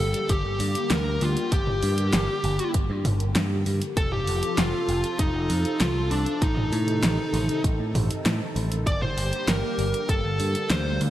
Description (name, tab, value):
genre	synthwave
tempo	98 BPM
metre	4/4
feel	straight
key	G minor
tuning	A4 = 440 Hz
part	fuzz lead guitar	melody	0.0-11.0 s	D4 to D5	-28 LUFS	equal	distortion, digital delay
part	phased analog pad	sustained chords	0.0-11.1 s	C3 to A4	-32 LUFS	equal	phaser, chorus, sidechain pumping
part	picked electric bass	bass	0.0-11.1 s	F1 to A2	-26 LUFS	equal	sidechain pumping
part	pop drum kit	drums	0.1-11.1 s	hi-hat, snare drum, toms	-28 LUFS	equal	none
part	electronic kick drum	drums	0.3-10.2 s	none	-25 LUFS	equal	none
room	light reverb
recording	bright 1980s-style digital production, lossy compression artefacts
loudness	-22 LUFS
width	side -13 dB against mid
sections	0.0-11.1 A section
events	none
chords	0.0 Gm; 4.0 F; 6.4 Adim; 8.9 Gmadd9